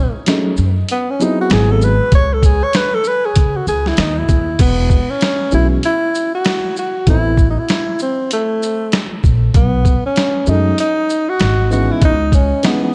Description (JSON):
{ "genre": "hip hop, jazz-hop", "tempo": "97 BPM", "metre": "4/4", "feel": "swing 60% on 16ths", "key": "E major", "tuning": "A4 = 441 Hz", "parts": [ { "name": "breathy tenor saxophone", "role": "melody", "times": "0.0-12.9 s", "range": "A3 to C#5", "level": "-20 LUFS", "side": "equal", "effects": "analog delay" }, { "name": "upright bass", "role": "bass", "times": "0.0-12.5 s", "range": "E1 to C#3", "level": "-18 LUFS", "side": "equal", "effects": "none" }, { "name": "dark baby grand piano", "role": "accompaniment", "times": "0.3-12.9 s", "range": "E3 to G#4", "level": "-22 LUFS", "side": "equal", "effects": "analog chorus" }, { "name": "boom bap sampler-style drum kit", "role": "drums", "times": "0.3-12.8 s", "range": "crash cymbal, hi-hat, kick drum, shaker, snare drum", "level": "-18 LUFS", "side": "equal", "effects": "vintage 12-bit sampler grit" } ], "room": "light reverb, small room ambience", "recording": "none", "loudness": "-15 LUFS", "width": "mono", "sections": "0.0-4.6 A section; 4.6-12.9 B section", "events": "tenor saxophone solo 0.0-4.6", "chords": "0.0 B13; 1.5 G#7alt; 2.1 C#sus2; 4.6 E69; 7.1 Amadd9; 9.5 B13; 11.4 G#m7; 12.0 C#m9", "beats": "0.27 0.88 1.50 | 2.12 2.74 3.36 3.98 | 4.59 5.21 5.83 6.45 | 7.07 7.69 8.31 8.92 | 9.54 10.16 10.78 11.40 | 12.02 12.64" }